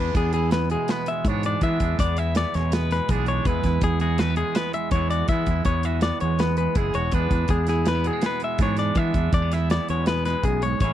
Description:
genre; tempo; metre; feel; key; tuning
math rock and midwest emo; 163 BPM; 5/4; straight; unclear; A4 = 439 Hz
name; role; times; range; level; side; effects
twangy electric guitar; accompaniment; 0.0-10.9 s; E2 to F#4; -28 LUFS; right 14 dB; none
clean electric guitar; arpeggios; 0.0-10.9 s; G#4 to E5; -26 LUFS; left 6 dB; none
growling fingered electric bass; bass; 0.0-10.9 s; E1 to E3; -24 LUFS; equal; overdrive
modern studio drum kit; drums; 0.1-10.9 s; hi-hat, kick drum, snare drum; -26 LUFS; equal; none
room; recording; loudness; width
little or no reverb; dry, close 1970s-style studio recording; -20 LUFS; side -12 dB against mid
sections
0.0-10.9 A section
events
none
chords
0.0 E7; 3.5 C#m7/E; 7.1 E7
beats
0.15 0.52 0.89 1.25 | 1.62 1.99 2.36 2.72 3.09 | 3.46 3.82 4.19 4.56 4.92 | 5.29 5.66 6.03 6.39 6.76 | 7.13 7.50 7.86 8.23 8.60 | 8.97 9.33 9.70 10.07 10.44 | 10.80

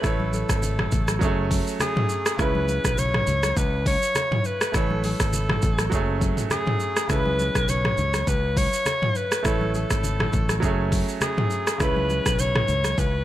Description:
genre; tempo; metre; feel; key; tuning
afrobeats; 102 BPM; 4/4; swing 55% on 16ths; C# minor; A4 = 437 Hz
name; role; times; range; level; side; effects
breathy alto saxophone; melody; 0.0-13.2 s; G#4 to C#5; -26 LUFS; left 1 dB; digital delay
clear concert grand piano; accompaniment; 0.0-13.2 s; C#3 to C#5; -30 LUFS; right 4 dB; none
fingered electric bass; bass; 0.0-13.2 s; F#1 to C#2; -26 LUFS; equal; none
deep house drum kit; drums; 0.0-13.1 s; hi-hat, kick drum, rim click, shaker, toms; -25 LUFS; equal; none
congas; percussion; 0.0-13.0 s; none; -33 LUFS; left 2 dB; none
room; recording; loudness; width
little or no reverb; none; -20 LUFS; side -13 dB against mid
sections
0.0-13.2 A section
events
none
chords
0.0 Aadd9; 1.2 F#madd9; 2.4 C#m7; 4.7 Aadd9; 5.9 F#madd9; 7.1 C#m7; 9.4 Aadd9; 10.6 F#madd9; 11.8 C#m7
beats
| 0.04 0.63 1.22 1.80 | 2.39 2.98 3.57 4.16 | 4.74 5.33 5.92 6.51 | 7.10 7.69 8.27 8.86 | 9.45 10.04 10.63 11.21 | 11.80 12.39 12.98

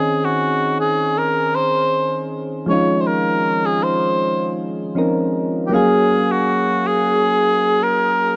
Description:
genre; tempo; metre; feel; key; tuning
R&B; 79 BPM; 4/4; swing 54% on 16ths; Db major; A4 = 441 Hz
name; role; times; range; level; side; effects
mellow cor anglais; melody; 0.0-8.4 s; Gb4 to Db5; -20 LUFS; equal; none
soft electric-piano-like synth keys; accompaniment; 0.0-8.4 s; Eb3 to F5; -22 LUFS; equal; chorus
room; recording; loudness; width
light reverb; worn, warbling old tape, cassette tape, warbly pitch drift; -18 LUFS; mono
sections
0.0-8.4 A section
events
none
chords
0.0 Dbmaj9; 5.7 Gbmaj9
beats
0.41 1.17 1.93 | 2.68 3.44 4.20 4.96 | 5.72 6.48 7.24 8.00

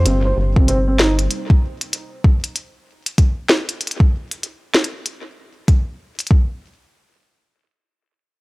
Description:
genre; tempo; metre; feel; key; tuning
IDM; 96 BPM; 4/4; swing 62% on 16ths; C minor; A4 = 440 Hz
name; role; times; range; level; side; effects
phased analog pad; sustained chords; 0.0-1.3 s; C3 to G4; -33 LUFS; right 3 dB; phaser, chorus
rubbery square bass; bass; 0.0-1.3 s; G1; -17 LUFS; equal; none
felt-muted upright piano; arpeggios; 0.1-1.1 s; C3 to C5; -22 LUFS; right 2 dB; low-pass filter, tape echo
glitchy drum kit; drums; 0.1-6.3 s; hi-hat, snare drum; -18 LUFS; equal; small room reverb
electronic kick drum; drums; 0.6-6.5 s; none; -13 LUFS; equal; small room reverb
room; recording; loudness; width
little or no reverb; dry, gritty hardware recording, cassette tape; -16 LUFS; side -23 dB against mid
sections
0.0-6.3 A section; 6.3-8.4 B section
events
filter sweep on analog synth pad 0.0-1.3; filter sweep on felt piano 0.0-1.3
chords
0.0 Cm7; 1.3 N.C.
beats
0.06 0.68 | 1.31 1.93 2.56 3.18 | 3.81 4.43 5.06 5.68 | 6.31

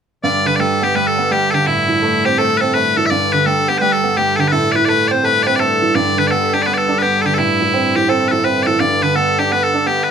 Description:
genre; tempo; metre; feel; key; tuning
celtic folk; 168 BPM; 4/4; swing 63% on 8ths; G major; A4 = 440 Hz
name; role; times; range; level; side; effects
loud bright bagpipes; melody; 0.2-10.1 s; E4 to E5; -15 LUFS; left 2 dB; none
clear baby grand piano; accompaniment; 0.2-10.1 s; G2 to D4; -18 LUFS; right 4 dB; none
hand-pumped harmonium; drone; 0.2-10.1 s; G2 to D3; -24 LUFS; left 2 dB; none
room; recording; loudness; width
moderate stone room reverb, RT60 0.9 s; band playing live in one room; -13 LUFS; side -7 dB against mid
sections
0.2-10.1 A section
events
none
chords
0.2 G; 1.7 Am; 3.1 G; 4.5 Am; 6.0 G; 7.4 Am; 8.8 G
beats
| 0.24 0.59 0.95 1.31 | 1.67 2.02 2.38 2.74 | 3.10 3.45 3.81 4.17 | 4.52 4.88 5.24 5.59 | 5.95 6.31 6.66 7.02 | 7.38 7.73 8.09 8.45 | 8.80 9.16 9.51 9.87

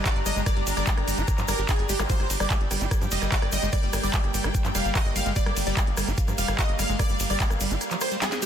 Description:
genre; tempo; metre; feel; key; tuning
psychedelic trance; 147 BPM; 4/4; straight; G phrygian; A4 = 440 Hz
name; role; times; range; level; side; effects
evolving wavetable pad; sustained chords; 0.0-8.5 s; G3 to D4; -35 LUFS; right 2 dB; chorus, built-in reverb, vintage 12-bit sampler grit, sidechain pumping
overdriven acid bass; riff; 0.0-8.5 s; F3 to G4; -34 LUFS; moving between left 9 dB and right 8 dB; distortion, auto-pan, sidechain pumping, ping-pong delay
warm studio string section; texture; 0.0-8.5 s; G4 to Bb5; -36 LUFS; left 1 dB; sidechain pumping
supersaw stab; melody; 0.1-8.5 s; G4 to F5; -31 LUFS; right 1 dB; phaser, sidechain pumping, ping-pong delay
electronic kick drum; drums; 0.1-7.5 s; none; -25 LUFS; equal; overdrive
techno drum kit; drums; 0.1-8.5 s; handclaps, hi-hat, ride cymbal, rim click, snare drum; -30 LUFS; right 1 dB; none
egg shaker; percussion; 0.1-8.5 s; none; -37 LUFS; left 6 dB; none
tight sequencer bass; bass; 0.2-7.8 s; F1 to G2; -29 LUFS; equal; none
zap; sound effects; 2.0-2.1 s; none; -36 LUFS; equal; none
room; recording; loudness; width
little or no reverb; dense, heavily limited modern master; -22 LUFS; side -9 dB against mid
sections
0.0-8.5 A section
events
kick drops out 7.8-8.5; drum fill 8.2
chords
0.0 G5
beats
0.06 | 0.46 0.87 1.28 1.69 | 2.10 2.50 2.91 3.32 | 3.73 4.14 4.54 4.95 | 5.36 5.77 6.18 6.59 | 6.99 7.40 7.81 8.22

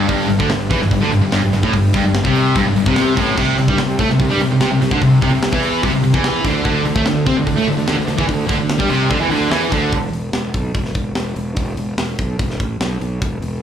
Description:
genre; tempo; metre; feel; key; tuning
heavy metal; 146 BPM; 4/4; straight; E minor; A4 = 441 Hz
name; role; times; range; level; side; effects
high-gain distorted guitar; riff; 0.0-9.9 s; G2 to C4; -19 LUFS; right 7 dB; distortion, slapback echo
sludgy distorted guitar; riff; 0.0-9.9 s; G2 to C4; -20 LUFS; left 7 dB; overdrive, slapback echo
thick fuzz guitar; riff; 0.0-9.9 s; G2 to C4; -21 LUFS; left 1 dB; distortion, slapback echo
fuzz fingered electric bass; bass; 0.0-13.6 s; E1 to C3; -21 LUFS; equal; overdrive
tight metal drum kit; drums; 0.1-13.5 s; crash cymbal, hi-hat, kick drum, snare drum; -22 LUFS; equal; none
room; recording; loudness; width
light reverb; live gig heard through the venue's PA, club reverb; -14 LUFS; side -9 dB against mid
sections
0.0-9.9 A section; 9.9-13.6 B section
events
none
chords
0.1 G5; 3.4 C5; 9.9 E5; 12.8 N.C.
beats
| 0.09 0.50 0.91 1.32 | 1.74 2.15 2.56 2.97 | 3.38 3.79 4.20 4.61 | 5.02 5.42 5.83 6.24 | 6.65 7.06 7.47 7.88 | 8.29 8.70 9.11 9.52 | 9.93 10.34 10.75 11.16 | 11.57 11.99 12.40 12.81 | 13.22

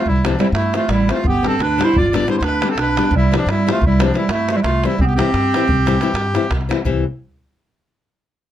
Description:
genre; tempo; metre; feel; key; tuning
balkan folk, Balkan wedding band; 354 BPM (eighths); 11/8; straight; C major; A4 = 442 Hz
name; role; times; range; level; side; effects
dark clarinet; melody; 0.0-6.5 s; F3 to F4; -18 LUFS; right 3 dB; none
accordion; second line; 0.0-6.5 s; D4 to D5; -22 LUFS; left 1 dB; none
upright bass; bass; 0.1-7.0 s; G1 to G2; -20 LUFS; left 1 dB; none
davul; percussion; 0.1-7.0 s; none; -23 LUFS; right 1 dB; none
nylon-string guitar; accompaniment; 0.2-7.0 s; D3 to E4; -21 LUFS; left 7 dB; none
room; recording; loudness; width
light reverb; close, detailed microphones; -14 LUFS; side -11 dB against mid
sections
0.0-6.9 A section; 6.9-8.5 B section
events
none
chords
0.0 C; 1.2 G; 3.1 C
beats
0.04 0.22 0.39 0.56 0.73 0.90 1.07 | 1.25 1.42 1.59 1.76 1.93 2.10 2.27 2.44 2.61 2.78 2.95 | 3.12 3.29 3.46 3.63 3.80 3.97 4.14 4.31 4.48 4.65 4.82 | 4.99 5.16 5.33 5.50 5.67 5.84 6.01 6.18 6.35 6.51 6.68 | 6.85 7.02

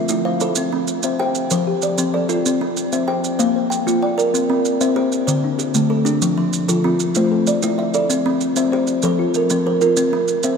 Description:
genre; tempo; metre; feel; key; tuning
southern african traditional, mbira-style interlocking cycle; 128 BPM (dotted quarters); 12/8; straight; C mixolydian; A4 = 440 Hz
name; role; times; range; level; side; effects
kalimba; arpeggios; 0.0-10.6 s; D3 to G5; -19 LUFS; left 4 dB; none
kalimba; arpeggios; 0.0-10.6 s; D3 to G5; -20 LUFS; right 3 dB; none
maracas; percussion; 0.1-10.6 s; none; -27 LUFS; right 8 dB; none
room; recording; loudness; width
wet cathedral reverb, RT60 6.2 s; in a vast, echoing space; -16 LUFS; side -6 dB against mid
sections
0.0-4.3 A section; 4.3-10.6 B section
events
none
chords
0.0 Am; 0.6 C; 1.5 F; 2.5 C; 3.4 Bb; 4.3 C; 5.3 D5; 6.2 F; 7.2 Am; 8.1 C; 9.0 F; 10.0 C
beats
0.10 | 0.57 1.04 1.51 1.99 | 2.46 2.93 3.40 3.87 | 4.34 4.81 5.28 5.75 | 6.22 6.69 7.16 7.62 | 8.09 8.56 9.03 9.50 | 9.97 10.44

